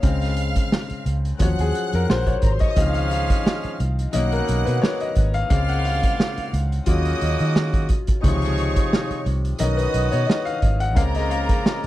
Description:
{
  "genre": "lush 1970s-style soul",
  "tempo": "88 BPM",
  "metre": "4/4",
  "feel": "swing 54% on 16ths",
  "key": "Db major",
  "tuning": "A4 = 441 Hz",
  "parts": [
    { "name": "rich studio string section", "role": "second line", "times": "0.0-11.9 s", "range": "Bb4 to Gb6", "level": "-30 LUFS", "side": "right 2 dB", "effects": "none" },
    { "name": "clear baby grand piano", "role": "accompaniment", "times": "0.0-11.9 s", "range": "C3 to Gb5", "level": "-25 LUFS", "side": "left 5 dB", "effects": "none" },
    { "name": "vintage muted fingered electric bass", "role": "bass", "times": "0.0-11.9 s", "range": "Ab1 to Eb3", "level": "-22 LUFS", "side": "equal", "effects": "none" },
    { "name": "vintage drum kit", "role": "drums", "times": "0.0-11.9 s", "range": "hi-hat, kick drum, snare drum", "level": "-21 LUFS", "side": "right 1 dB", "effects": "none" },
    { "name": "clear horn section", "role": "stabs", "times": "2.8-11.9 s", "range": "Ab2 to Ab4", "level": "-29 LUFS", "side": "right 5 dB", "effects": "slapback echo" }
  ],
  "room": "little or no reverb",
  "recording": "none",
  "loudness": "-18 LUFS",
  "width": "side -15 dB against mid",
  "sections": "0.0-11.9 A section",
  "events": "grand piano solo 0.0-11.9",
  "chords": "0.0 Dbmaj7; 1.4 Ebm9; 2.8 Dbmaj9; 4.1 Cbmaj7; 5.5 Bbm7/Db; 6.9 Ebm9; 8.2 Dbmaj9; 9.6 Cbmaj7; 11.0 Bbm7/Db"
}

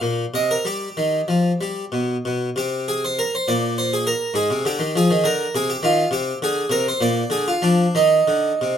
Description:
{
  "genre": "classical, baroque-style suite movement for harpsichord",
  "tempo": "60-70 BPM (dotted quarters)",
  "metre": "6/8",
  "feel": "rubato",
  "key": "unclear",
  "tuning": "A4 = 440 Hz",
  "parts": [
    { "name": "harpsichord", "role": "solo", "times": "0.0-8.8 s", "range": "Ab2 to F5", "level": "-18 LUFS", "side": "equal", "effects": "none" }
  ],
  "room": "moderate studio reverb, RT60 0.8 s",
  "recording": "none",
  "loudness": "-18 LUFS",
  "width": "side -8 dB against mid",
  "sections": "0.0-8.8 A section",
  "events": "none",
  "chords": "0.0 Ab (rootless); 0.6 Ebadd9; 1.6 G; 2.6 Bb13; 4.4 Fm/Ab; 6.1 Bb13/C; 7.0 Bb; 7.9 N.C."
}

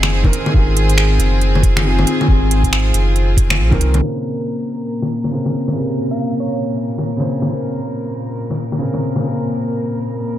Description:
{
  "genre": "future garage",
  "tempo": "138 BPM",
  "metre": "4/4",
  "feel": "swing 61% on 16ths",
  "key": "Bb minor",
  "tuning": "A4 = 440 Hz",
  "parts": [
    { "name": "warm upright piano", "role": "accompaniment", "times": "0.0-10.4 s", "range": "C3 to C5", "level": "-22 LUFS", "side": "right 1 dB", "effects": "sidechain pumping, ping-pong delay" },
    { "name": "rich chamber string section", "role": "sustained chords", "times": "0.0-10.4 s", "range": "Bb2 to Bb4", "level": "-22 LUFS", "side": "left 1 dB", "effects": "sidechain pumping" },
    { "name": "warm sub bass", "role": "bass", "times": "0.0-4.0 s", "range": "Gb1 to C2", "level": "-15 LUFS", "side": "equal", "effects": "sidechain pumping" },
    { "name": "organic electronic drum kit", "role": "drums", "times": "0.0-9.2 s", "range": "bongos, finger snaps, hi-hat", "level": "-20 LUFS", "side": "left 2 dB", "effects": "overdrive" },
    { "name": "electronic kick drum", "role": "drums", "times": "0.2-3.8 s", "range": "none", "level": "-15 LUFS", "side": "equal", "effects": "none" },
    { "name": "thumb-piano-like synth pluck", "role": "melody", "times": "6.1-6.8 s", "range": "Db5 to F5", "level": "-32 LUFS", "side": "right 6 dB", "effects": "chorus, phaser, diffuse ambient delay" }
  ],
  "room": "moderate lush hall reverb, RT60 1.8 s",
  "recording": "dreamy mix soaked in reverb, low-pass filter",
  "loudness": "-15 LUFS",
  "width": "side -12 dB against mid",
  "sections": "0.0-4.0 A section; 4.0-10.4 B section",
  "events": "filter sweep 4.0-10.4",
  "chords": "0.0 Ab; 4.0 Bbmadd9"
}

